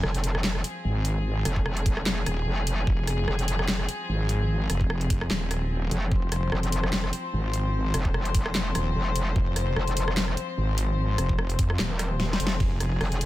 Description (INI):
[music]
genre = heavy wobble dubstep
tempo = 148 BPM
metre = 4/4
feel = swing 55% on 16ths, half-time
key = F minor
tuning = A4 = 440 Hz
[part]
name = warm studio string section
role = sustained chords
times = 0.0-13.3 s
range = F3 to C5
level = -32 LUFS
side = left 3 dB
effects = sidechain pumping
[part]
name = metallic wobble bass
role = bass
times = 0.0-13.3 s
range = Eb1 to F1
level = -27 LUFS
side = equal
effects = distortion, chorus, overdrive
[part]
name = dubstep drum kit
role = drums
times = 0.0-13.3 s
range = handclaps, hi-hat, ride cymbal, rim click, snare drum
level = -30 LUFS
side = equal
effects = none
[part]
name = wobble bass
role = bass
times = 0.8-13.0 s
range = Eb1 to F2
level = -26 LUFS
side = equal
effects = chorus, overdrive
[part]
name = electronic kick drum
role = drums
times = 1.6-12.7 s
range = none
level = -25 LUFS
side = equal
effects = none
[sound]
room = little or no reverb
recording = none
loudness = -24 LUFS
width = side -15 dB against mid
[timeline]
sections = 0.0-13.3 A section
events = drum fill 12.2-12.6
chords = 0.0 Fm